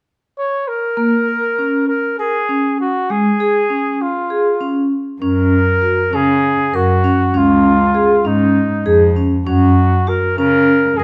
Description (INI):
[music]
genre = contemporary instrumental, contemporary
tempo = 198 BPM (eighths)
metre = 7/8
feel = straight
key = F# major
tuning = A4 = 440 Hz
[part]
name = warm flugelhorn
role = melody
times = 0.4-11.0 s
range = D#4 to C#5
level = -20 LUFS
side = equal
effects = none
[part]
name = vibraphone with medium hard mallets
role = arpeggios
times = 1.0-11.0 s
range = G#3 to A#4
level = -18 LUFS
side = equal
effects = none
[part]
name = warm cello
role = bass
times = 5.2-11.0 s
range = C#2 to C#3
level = -19 LUFS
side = equal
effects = none
[sound]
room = moderate recital hall reverb, RT60 1.4 s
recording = close, detailed microphones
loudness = -15 LUFS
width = mono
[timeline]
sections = 1.0-5.2 A section; 5.2-11.0 B section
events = none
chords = 0.0 N.C.; 1.0 A#m7; 3.1 C#; 5.2 F#; 7.3 C#add9; 9.5 F#